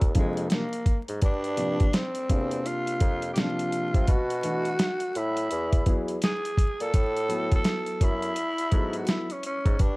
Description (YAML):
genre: hip hop, jazz-hop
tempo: 84 BPM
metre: 4/4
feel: swing 62% on 16ths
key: unclear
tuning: A4 = 439 Hz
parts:
  - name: growling tenor saxophone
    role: melody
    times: 0.0-10.0 s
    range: Ab3 to A4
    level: -30 LUFS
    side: equal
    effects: none
  - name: mellow bassoon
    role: bass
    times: 0.0-10.0 s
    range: D2 to C3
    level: -31 LUFS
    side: equal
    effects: none
  - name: dusty soul sampler-style drum kit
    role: drums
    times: 0.0-10.0 s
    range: hi-hat, kick drum, snare drum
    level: -24 LUFS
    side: equal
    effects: none
  - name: dark upright piano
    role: accompaniment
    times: 0.1-9.3 s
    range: C3 to A4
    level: -32 LUFS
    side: left 1 dB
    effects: none
room: small room ambience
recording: dark, warm production, vinyl crackle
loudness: -24 LUFS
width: side -24 dB against mid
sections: 0.0-10.0 A section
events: none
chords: 0.0 Bb9/D; 1.2 Gm7; 4.1 Bm7; 5.5 Eadd9; 6.9 Asus2